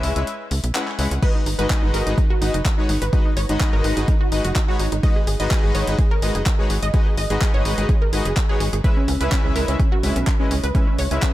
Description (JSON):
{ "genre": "progressive house", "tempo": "126 BPM", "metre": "4/4", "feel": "straight", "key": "G# minor", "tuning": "A4 = 440 Hz", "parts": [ { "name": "soft supersaw", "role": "stabs", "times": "0.0-11.3 s", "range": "G#3 to F#5", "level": "-26 LUFS", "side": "left 2 dB", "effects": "sidechain pumping, tape echo" }, { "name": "tight sequencer bass", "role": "bass", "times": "0.0-11.2 s", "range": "F#1 to C#2", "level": "-23 LUFS", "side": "equal", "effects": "sidechain pumping" }, { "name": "deep house drum kit", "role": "drums", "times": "0.0-11.3 s", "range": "crash cymbal, handclaps, hi-hat", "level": "-28 LUFS", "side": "equal", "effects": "none" }, { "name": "wide unison pluck", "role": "arpeggios", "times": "1.2-11.3 s", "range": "C#4 to D#5", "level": "-26 LUFS", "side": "right 1 dB", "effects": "sidechain pumping, tape echo" }, { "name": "electronic kick drum", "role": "drums", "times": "1.2-11.3 s", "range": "none", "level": "-19 LUFS", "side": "equal", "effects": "none" } ], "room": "digital ambience", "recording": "none", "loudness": "-17 LUFS", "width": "side -15 dB against mid", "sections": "0.0-11.3 A section", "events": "break 0.3-1.2", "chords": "0.0 C#m7; 1.2 G#m7; 8.8 C#m7" }